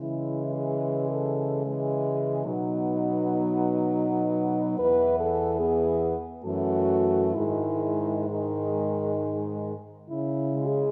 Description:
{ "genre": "classical, lyrical piece for horn quartet", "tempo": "63-78 BPM", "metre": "3/4", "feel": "rubato", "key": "C# minor", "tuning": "A4 = 439 Hz", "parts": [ { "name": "mellow French horn", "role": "melody", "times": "0.0-10.9 s", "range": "D#4 to B4", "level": "-30 LUFS", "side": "equal", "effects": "none" }, { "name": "clear French horn", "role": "second line", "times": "0.0-10.9 s", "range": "G#3 to B3", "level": "-35 LUFS", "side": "equal", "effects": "none" }, { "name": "warm French horn", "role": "accompaniment", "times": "0.0-10.9 s", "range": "C#3 to F#3", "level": "-34 LUFS", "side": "equal", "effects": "none" }, { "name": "mellow French horn", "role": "bass", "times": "0.0-10.8 s", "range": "E2 to C#3", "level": "-34 LUFS", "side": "equal", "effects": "none" } ], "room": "moderate scoring stage reverb, RT60 2.0 s", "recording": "none", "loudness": "-27 LUFS", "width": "mono", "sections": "0.0-10.9 A section", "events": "none", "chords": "0.0 C#m; 2.5 B; 4.8 E5; 6.5 F#m7; 7.4 G#5; 10.1 C#5" }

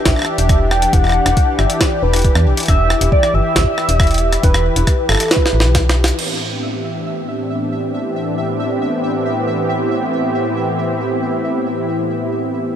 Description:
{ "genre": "IDM", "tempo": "137 BPM", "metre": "4/4", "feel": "straight", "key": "A minor", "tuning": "A4 = 439 Hz", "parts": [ { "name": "warbly nostalgic lead", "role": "melody", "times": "0.0-6.0 s", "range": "A4 to G5", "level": "-19 LUFS", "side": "equal", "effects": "analog chorus, ping-pong delay" }, { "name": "warm analog pad", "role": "sustained chords", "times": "0.0-12.8 s", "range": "A2 to G4", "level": "-19 LUFS", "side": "left 1 dB", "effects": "chorus, vintage 12-bit sampler grit" }, { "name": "metallic FM bass", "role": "bass", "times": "0.1-6.1 s", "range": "E1 to E2", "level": "-16 LUFS", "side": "equal", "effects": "none" }, { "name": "electronic kick drum", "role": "drums", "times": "0.1-5.8 s", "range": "none", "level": "-15 LUFS", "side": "equal", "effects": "studio reverb" }, { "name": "jungle sampler-style drum kit", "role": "drums", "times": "0.1-6.3 s", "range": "crash cymbal, hi-hat, rim click, snare drum", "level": "-19 LUFS", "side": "equal", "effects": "studio reverb, ping-pong delay" }, { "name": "pulsing gated texture", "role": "texture", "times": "6.4-12.8 s", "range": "E5", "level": "-26 LUFS", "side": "right 1 dB", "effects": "chorus, built-in reverb" } ], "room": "light reverb", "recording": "none", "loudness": "-14 LUFS", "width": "side -9 dB against mid", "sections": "0.0-6.2 A section; 6.2-12.8 B section", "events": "drum fill 5.3-6.2; band accent 6.0", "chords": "0.0 Em7; 6.2 Am11" }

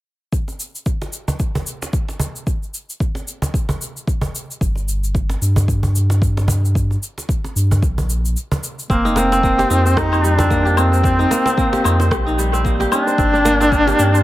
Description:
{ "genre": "organic downtempo", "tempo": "112 BPM", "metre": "4/4", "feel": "swing 57% on 16ths", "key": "unclear", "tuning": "A4 = 440 Hz", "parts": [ { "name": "electronic cabasa, rim click and woodblock", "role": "drums", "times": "0.3-14.2 s", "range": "none", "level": "-27 LUFS", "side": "left 1 dB", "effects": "dub echo" }, { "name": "electronic kick drum", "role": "drums", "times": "0.3-13.8 s", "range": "none", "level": "-21 LUFS", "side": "equal", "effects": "none" }, { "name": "cajon", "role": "percussion", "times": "0.5-14.0 s", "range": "none", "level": "-25 LUFS", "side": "right 1 dB", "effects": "none" }, { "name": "warm sub bass", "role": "bass", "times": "4.6-14.2 s", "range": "F1 to G2", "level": "-17 LUFS", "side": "equal", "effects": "sidechain pumping" }, { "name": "clear duduk", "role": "melody", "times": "8.9-14.2 s", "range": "Bb3 to Eb4", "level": "-17 LUFS", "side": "equal", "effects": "dub echo" }, { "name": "kora", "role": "arpeggios", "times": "8.9-14.2 s", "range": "G3 to C5", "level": "-19 LUFS", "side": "equal", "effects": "dub echo" }, { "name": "wind-like tuned noise texture", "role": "texture", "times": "11.0-14.2 s", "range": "G5", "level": "-29 LUFS", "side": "equal", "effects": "built-in reverb" } ], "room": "moderate spring reverb, RT60 1.6 s", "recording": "echo-heavy mix", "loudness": "-15 LUFS", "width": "side -15 dB against mid", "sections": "0.3-8.9 A section; 8.9-14.2 B section", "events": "break 8.4-8.9", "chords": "0.3 N.C.; 4.6 Gm; 8.9 F7sus4; 13.2 Gm" }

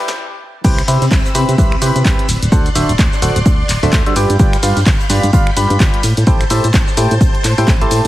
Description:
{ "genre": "piano house", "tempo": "128 BPM", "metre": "4/4", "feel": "swing 59% on 16ths", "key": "C major", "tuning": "A4 = 443 Hz", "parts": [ { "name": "string machine, violins", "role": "sustained chords", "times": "0.0-8.1 s", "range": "C4 to G6", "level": "-25 LUFS", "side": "equal", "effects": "ensemble chorus, vintage 12-bit sampler grit, sidechain pumping" }, { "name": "percussive organ stab", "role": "riff", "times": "0.0-8.1 s", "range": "C3 to B5", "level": "-18 LUFS", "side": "equal", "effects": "chorus, cassette tape, sidechain pumping, ping-pong delay" }, { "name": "solid FM bass", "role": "bass", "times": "0.0-8.1 s", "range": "D1 to C3", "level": "-16 LUFS", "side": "equal", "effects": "sidechain pumping" }, { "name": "punchy analog drum machine", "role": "drums", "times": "0.1-8.1 s", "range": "crash cymbal, finger snaps, handclaps, hi-hat, ride cymbal, shaker, snare drum", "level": "-21 LUFS", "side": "equal", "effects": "none" }, { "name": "electronic kick drum", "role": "drums", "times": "0.6-7.8 s", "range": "none", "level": "-14 LUFS", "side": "equal", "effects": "none" }, { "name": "jazz brush drum kit", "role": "drums", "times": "0.6-8.0 s", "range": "hi-hat, snare drum", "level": "-31 LUFS", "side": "right 3 dB", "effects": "none" } ], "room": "digital ambience", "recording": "heavily compressed radio sound, high-pass filter", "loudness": "-11 LUFS", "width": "side -15 dB against mid", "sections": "0.6-8.1 A section", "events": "drum fill 0.0; stop 0.2-0.6; drop 0.6-8.1", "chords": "0.0 Am7; 0.6 Cmaj7; 2.3 D7; 4.2 G7; 6.0 Am7" }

